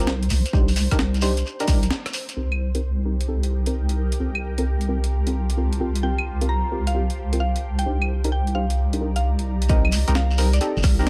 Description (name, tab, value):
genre	UK garage, two-step garage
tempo	131 BPM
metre	4/4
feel	swing 67% on 16ths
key	C dorian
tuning	A4 = 440 Hz
part	ethereal airy pad	sustained chords	0.0-11.1 s	G4 to C5	-41 LUFS	equal	ensemble chorus, built-in reverb, sidechain pumping
part	deep mellow chord stab	stabs	0.0-11.1 s	C4 to C5	-31 LUFS	equal	chorus, delay
part	deep soft wobble bass	bass	0.0-11.1 s	G1 to C2	-24 LUFS	equal	chorus
part	breakbeat sampler-style drum kit	drums	0.0-11.1 s	claves, hi-hat, rim click, snare drum	-31 LUFS	equal	none
part	shekere	percussion	0.0-2.4, 9.7-11.1 s	none	-35 LUFS	equal	none
part	electronic kick drum	drums	0.5-1.8, 9.7-11.0 s	none	-22 LUFS	equal	none
part	ethereal airy pad	texture	3.1-11.1 s	Eb4 to Bb5	-40 LUFS	equal	ensemble chorus, built-in reverb, phaser, sidechain pumping
part	mallet-like synth pluck	melody	6.0-11.1 s	D5 to Bb5	-32 LUFS	equal	chorus, dub echo
room	digital ambience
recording	vinyl crackle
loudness	-22 LUFS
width	mono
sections	0.0-2.4 A section; 2.4-9.7 B section; 9.7-11.1 C section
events	break 1.9-2.4; band accent 1.9; drop 9.7-11.1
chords	0.0 Gmadd11; 0.5 Cm9; 2.4 Cm7; 4.2 Gm11/C; 7.9 Cm9; 9.7 Eb6